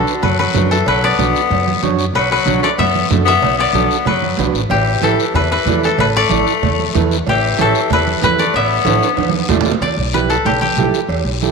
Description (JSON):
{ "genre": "latin, cumbia", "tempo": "188 BPM", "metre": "4/4", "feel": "straight", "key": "E dorian", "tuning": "A4 = 439 Hz", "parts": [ { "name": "koto", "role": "melody", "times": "0.0-11.5 s", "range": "F#4 to E5", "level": "-18 LUFS", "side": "left 2 dB", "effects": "none" }, { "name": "raspy tenor saxophone", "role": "second line", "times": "0.0-9.5 s", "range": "D3 to B3", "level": "-18 LUFS", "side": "left 9 dB", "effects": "none" }, { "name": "overdriven combo organ", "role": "accompaniment", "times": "0.0-11.5 s", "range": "D4 to D5", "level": "-22 LUFS", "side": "right 11 dB", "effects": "none" }, { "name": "upright bass", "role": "bass", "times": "0.0-11.5 s", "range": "A1 to F#2", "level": "-20 LUFS", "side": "left 1 dB", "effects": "none" }, { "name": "guiro", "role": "percussion", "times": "0.1-11.5 s", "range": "none", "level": "-27 LUFS", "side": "left 14 dB", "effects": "none" }, { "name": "congas", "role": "percussion", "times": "0.2-11.5 s", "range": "none", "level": "-22 LUFS", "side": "right 10 dB", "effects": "none" }, { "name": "cowbell and timbales", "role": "percussion", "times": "0.2-11.5 s", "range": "none", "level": "-25 LUFS", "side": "right 11 dB", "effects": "none" } ], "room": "moderate plate reverb, RT60 2.6 s", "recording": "1960s-style stereo with parts hard left and right", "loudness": "-12 LUFS", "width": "side -4 dB against mid", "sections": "0.0-9.8 A section; 9.8-11.5 B section", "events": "drum fill 8.9-9.8; koto solo 9.8-11.5", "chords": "0.0 Bm; 4.7 Asus2; 9.8 Em" }